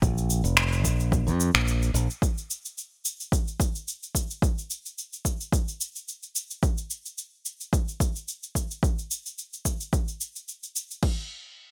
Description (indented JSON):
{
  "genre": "sunset chillout",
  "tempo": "109 BPM",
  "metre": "4/4",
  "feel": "swing 54% on 16ths",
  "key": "unclear",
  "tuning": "A4 = 440 Hz",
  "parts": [
    { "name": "modern bright fingered electric bass", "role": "bass", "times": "0.0-2.1 s", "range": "F1 to F2", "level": "-26 LUFS", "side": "equal", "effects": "none" },
    { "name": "deep house drum kit", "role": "drums", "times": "0.0-11.2 s", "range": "crash cymbal, kick drum", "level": "-28 LUFS", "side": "equal", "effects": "none" },
    { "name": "electronic shaker and finger snaps", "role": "drums", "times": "0.0-11.0 s", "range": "none", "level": "-30 LUFS", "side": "equal", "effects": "none" }
  ],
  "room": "little or no reverb",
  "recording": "bright 1980s-style digital production",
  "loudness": "-28 LUFS",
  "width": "mono",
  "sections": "0.0-11.0 A section",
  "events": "none",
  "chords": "none"
}